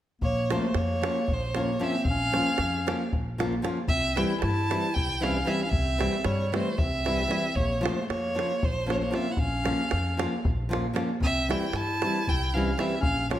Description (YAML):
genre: balkan folk, Balkan wedding band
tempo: 229 BPM (eighths)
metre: 7/8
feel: straight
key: Bb hungarian minor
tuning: A4 = 441 Hz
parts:
  - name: rich violin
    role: melody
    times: 0.2-13.4 s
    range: C5 to A5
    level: -30 LUFS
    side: right 2 dB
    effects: none
  - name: warm clarinet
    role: second line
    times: 0.2-13.4 s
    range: F3 to E4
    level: -32 LUFS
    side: left 3 dB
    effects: none
  - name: upright bass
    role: bass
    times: 0.2-13.4 s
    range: Bb1 to G2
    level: -31 LUFS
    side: equal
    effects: none
  - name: davul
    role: percussion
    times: 0.2-13.4 s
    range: none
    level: -32 LUFS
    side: right 1 dB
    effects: none
  - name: nylon-string guitar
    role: accompaniment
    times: 0.5-13.4 s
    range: E3 to F4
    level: -30 LUFS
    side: left 1 dB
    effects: none
room: moderate recital hall reverb, RT60 1.6 s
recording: none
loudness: -24 LUFS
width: side -12 dB against mid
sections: 0.2-13.4 A section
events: none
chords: 0.2 Bbm; 3.9 C; 7.5 Bbm; 11.2 C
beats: | 0.22 0.48 0.74 1.00 1.26 1.53 1.79 | 2.05 2.31 2.57 2.84 3.10 3.36 3.62 | 3.88 4.15 4.41 4.67 4.93 5.19 5.46 | 5.72 5.98 6.24 6.50 6.76 7.03 7.29 | 7.55 7.81 8.07 8.33 8.59 8.86 9.12 | 9.38 9.64 9.90 10.16 10.42 10.68 10.95 | 11.21 11.47 11.73 11.99 12.25 12.51 12.77 | 13.03 13.29